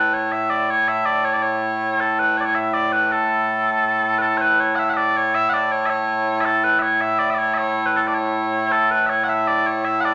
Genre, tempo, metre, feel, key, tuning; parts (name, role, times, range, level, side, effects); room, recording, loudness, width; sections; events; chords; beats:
scottish traditional, Scottish pipe music; 107 BPM (dotted quarters); 6/8; straight; A major; A4 = 440 Hz
mellow small bagpipes; solo; 0.0-10.1 s; A2 to F#5; -20 LUFS; equal
wet large studio reverb, RT60 0.9 s; nothing above 7.7 kHz; -20 LUFS; mono
0.0-4.2 A section; 4.2-10.1 A section
0.30 | 0.86 1.42 | 1.98 2.54 | 3.10 3.66 | 4.22 4.79 | 5.35 5.91 | 6.47 7.03 | 7.59 8.15 | 8.71 9.27 | 9.83